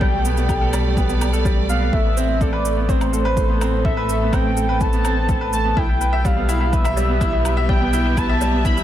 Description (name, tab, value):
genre	piano and strings electronica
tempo	125 BPM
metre	4/4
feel	straight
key	A minor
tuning	A4 = 440 Hz
part	warm velvety synth lead	melody	0.0-8.8 s	C5 to B5	-24 LUFS	equal	chorus
part	warm studio string section	sustained chords	0.0-8.8 s	A2 to E5	-27 LUFS	equal	none
part	bright baby grand piano	riff	0.0-8.8 s	G3 to E5	-23 LUFS	right 2 dB	none
part	warm sub bass	bass	0.0-8.8 s	A1 to B1	-21 LUFS	equal	sidechain pumping
part	electronic kick drum	drums	0.0-8.7 s	none	-21 LUFS	equal	none
part	shaker and woodblock	drums	0.2-8.8 s	none	-31 LUFS	right 2 dB	none
room	little or no reverb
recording	none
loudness	-16 LUFS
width	side -12 dB against mid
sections	0.0-8.8 A section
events	none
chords	0.0 Gadd9/B; 1.9 Amadd9; 5.8 Em/B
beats	| 0.01 0.49 0.97 1.45 | 1.93 2.41 2.89 3.37 | 3.85 4.33 4.81 5.29 | 5.77 6.25 6.73 7.21 | 7.69 8.17 8.65